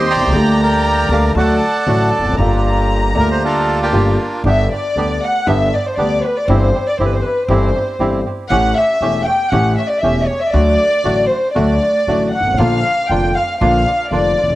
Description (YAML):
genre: tango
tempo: 118 BPM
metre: 4/4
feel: rubato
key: G minor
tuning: A4 = 440 Hz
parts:
  - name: bandoneon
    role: melody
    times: 0.0-4.4 s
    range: Bb3 to Bb5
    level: -18 LUFS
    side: right 2 dB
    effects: cassette tape, tape echo
  - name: warm chamber violin section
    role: second line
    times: 0.0-14.6 s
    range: B4 to C6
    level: -17 LUFS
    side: equal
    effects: cassette tape
  - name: dark concert grand piano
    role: accompaniment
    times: 0.0-14.6 s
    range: E1 to G4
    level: -18 LUFS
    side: left 2 dB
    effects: cassette tape
  - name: bandoneon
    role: stabs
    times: 0.0-14.3 s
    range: A3 to G4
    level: -24 LUFS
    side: right 3 dB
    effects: cassette tape, tape echo
  - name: upright bass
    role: bass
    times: 0.0-14.5 s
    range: E1 to D2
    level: -19 LUFS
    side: equal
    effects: none
room: light reverb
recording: home recording on cassette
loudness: -13 LUFS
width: side -16 dB against mid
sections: 0.0-4.4 A section; 4.4-14.6 B section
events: violin section solo 4.4-14.6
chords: 0.3 Gm/D; 1.4 D; 2.4 Gm7; 4.4 G; 6.5 C/G; 8.5 A7; 10.5 D; 12.6 Bb